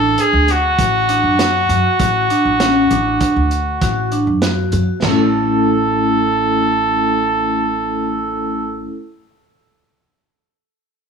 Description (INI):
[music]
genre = progressive instrumental, band music in an uneven meter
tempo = 99 BPM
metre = 5/4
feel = straight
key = A major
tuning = A4 = 440 Hz
[part]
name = clear trumpet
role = melody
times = 0.0-8.8 s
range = F#4 to A4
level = -17 LUFS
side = right 2 dB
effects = plate reverb
[part]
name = vibraphone with medium hard mallets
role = arpeggios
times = 0.0-9.0 s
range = A3 to A4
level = -18 LUFS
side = equal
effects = none
[part]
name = upright bass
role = bass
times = 0.0-8.8 s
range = A1 to F#2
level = -21 LUFS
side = left 1 dB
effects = none
[part]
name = vintage drum kit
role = drums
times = 0.2-5.2 s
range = china cymbal, hi-hat, kick drum, snare drum, toms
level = -22 LUFS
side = right 3 dB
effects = none
[sound]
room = light reverb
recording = none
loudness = -13 LUFS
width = side -6 dB against mid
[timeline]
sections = 0.0-5.0 A section; 5.0-8.1 B section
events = none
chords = 0.0 Bm/A (rootless); 5.0 A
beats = 0.18 0.79 1.39 | 2.00 2.60 3.21 3.81 4.42 | 5.02 5.63 6.23 6.84 7.44